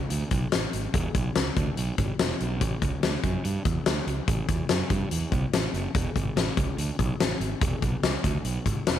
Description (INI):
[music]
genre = blues rock power trio and southern rock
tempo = 144 BPM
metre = 4/4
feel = straight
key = E mixolydian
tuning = A4 = 439 Hz
[part]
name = fuzz fingered electric bass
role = bass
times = 0.0-9.0 s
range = E1 to G2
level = -29 LUFS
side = right 3 dB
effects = overdrive
[part]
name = huge arena drum kit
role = drums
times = 0.1-9.0 s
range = hi-hat, kick drum, snare drum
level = -26 LUFS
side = left 2 dB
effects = none
[sound]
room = light reverb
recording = 1960s-style stereo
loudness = -24 LUFS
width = side -10 dB against mid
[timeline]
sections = 0.0-9.0 A section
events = none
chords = none